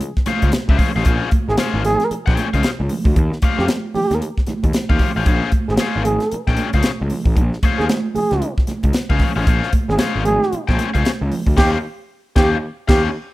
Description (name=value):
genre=funk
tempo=114 BPM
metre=4/4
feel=swing 60% on 16ths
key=Bb dorian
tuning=A4 = 442 Hz
part: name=tight funk drum kit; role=drums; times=0.0-13.1 s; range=crash cymbal, hi-hat, kick drum, snare drum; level=-17 LUFS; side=equal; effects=none
part: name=congas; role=percussion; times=0.2-11.5 s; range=none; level=-26 LUFS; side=right 4 dB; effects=none
part: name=biting overdriven guitar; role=accompaniment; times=0.3-13.1 s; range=Db4 to G5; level=-23 LUFS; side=left 6 dB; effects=none
part: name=fuzz picked electric bass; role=bass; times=0.3-13.1 s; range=Ab1 to F2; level=-21 LUFS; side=equal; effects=overdrive
part: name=breathy trombone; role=second line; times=1.5-13.0 s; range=G4 to Ab4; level=-20 LUFS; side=right 2 dB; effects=none
room=small room ambience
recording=rough home demo mix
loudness=-15 LUFS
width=side -17 dB against mid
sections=0.0-13.3 A section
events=band accent 11.6-13.3; drum fill 13.1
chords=0.0 Bbm9 (rootless); 3.2 Eb13; 5.3 Bbm9 (rootless); 11.6 Eb13